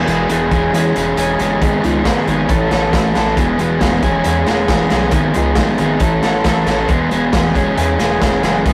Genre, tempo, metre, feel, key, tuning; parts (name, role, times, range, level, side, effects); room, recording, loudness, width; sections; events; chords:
indie rock; 136 BPM; 4/4; straight; A4 = 438 Hz
crunchy overdriven guitar; riff; 0.0-8.7 s; E2 to A4; -17 LUFS; equal
chorused synth bass; bass; 0.0-8.7 s; E1 to E2; -23 LUFS; equal
raw garage drum kit; drums; 0.1-8.7 s; hi-hat, kick drum, snare drum; -20 LUFS; equal
light reverb; rough rehearsal-room recording, warm saturation; -15 LUFS; mono
0.0-8.7 A section
0.0 E; 0.5 C#m/E; 1.6 G#m; 2.5 A; 3.4 E; 4.0 C#m/E; 5.1 G#m; 6.0 A; 6.9 E; 7.5 C#m/E